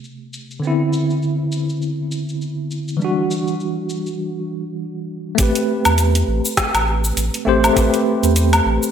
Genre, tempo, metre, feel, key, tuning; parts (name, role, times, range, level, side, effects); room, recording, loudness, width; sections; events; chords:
sunset chillout; 101 BPM; 4/4; swing 58% on 16ths; A dorian; A4 = 440 Hz
mellow tine electric piano; accompaniment; 0.0-8.9 s; C3 to C5; -19 LUFS; moving between left 2 dB and right 4 dB; medium stereo tremolo, auto-pan
smooth R&B drum kit; drums; 0.0-8.9 s; cabasa, hi-hat, rim click, woodblock; -21 LUFS; equal; low-pass filter on perc, low-pass filter on hats, low-pass filter on snare, low-pass filter on room, gated reverb
warm sub bass; bass; 5.4-8.8 s; A1 to E2; -18 LUFS; equal
electronic kick drum; drums; 5.4-7.9 s; -21 LUFS; equal
moderate lush hall reverb, RT60 1.9 s; bright 1980s-style digital production; -16 LUFS; side -8 dB against mid
0.0-5.4 A section; 5.4-8.9 B section
break 4.2-5.4
0.0 Am9; 0.6 Cmaj9; 3.0 Em9; 5.4 Am9